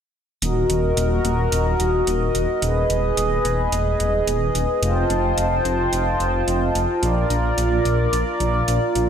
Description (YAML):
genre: synthwave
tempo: 109 BPM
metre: 4/4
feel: straight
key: Eb harmonic minor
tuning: A4 = 440 Hz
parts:
  - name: chorused pulse-width pad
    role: sustained chords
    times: 0.4-9.1 s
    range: F4 to A5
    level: -20 LUFS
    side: equal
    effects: vintage 12-bit sampler grit
  - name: wide detuned saw bass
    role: bass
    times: 0.4-9.1 s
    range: Eb1 to Bb1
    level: -22 LUFS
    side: equal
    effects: chorus
  - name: electronic hi-hat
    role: drums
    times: 0.4-9.1 s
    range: none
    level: -29 LUFS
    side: right 2 dB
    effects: none
room: moderate scoring stage reverb, RT60 1.7 s, digital ambience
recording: big arena sound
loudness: -18 LUFS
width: side -8 dB against mid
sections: 0.4-9.1 A section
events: filter sweep on detuned saw bass 0.4-9.1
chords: 0.4 Ebm; 2.6 Abm/Eb; 4.8 F7; 7.0 Bb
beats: | 0.42 0.97 1.52 2.07 | 2.62 3.17 3.73 4.28 | 4.83 5.38 5.93 6.48 | 7.03 7.58 8.13 8.68